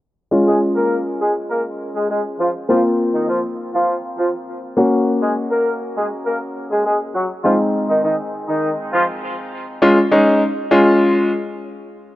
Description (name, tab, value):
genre	pop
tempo	101 BPM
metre	4/4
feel	straight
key	Db major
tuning	A4 = 440 Hz
part	clear grand piano	accompaniment	0.3-11.3 s	Ab3 to Gb4	-17 LUFS	left 1 dB	none
part	clear horn section	melody	0.5-9.0 s	Eb3 to Bb4	-19 LUFS	equal	analog delay
room	moderate lush hall reverb, RT60 2.7 s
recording	dry, gritty hardware recording, low-pass filter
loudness	-15 LUFS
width	side -15 dB against mid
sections	0.3-9.8 A section; 9.8-12.2 B section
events	filter sweep 0.3-9.8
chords	0.3 Db; 2.7 Bbsus2; 4.8 Gb; 7.4 Ab; 9.8 Db